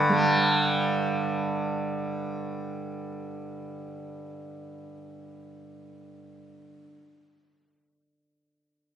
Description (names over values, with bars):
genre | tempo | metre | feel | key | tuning
indian classical | 189 BPM | 4/4 | straight | unclear | A4 = 444 Hz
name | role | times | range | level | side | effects
tanpura | drone | 0.0-6.7 s | G2 to G3 | -26 LUFS | right 1 dB | none
room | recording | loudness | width
wet recital hall reverb, RT60 1.5 s | recorded on a phone in the room, studio ambience | -25 LUFS | side -9 dB against mid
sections
none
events
none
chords
none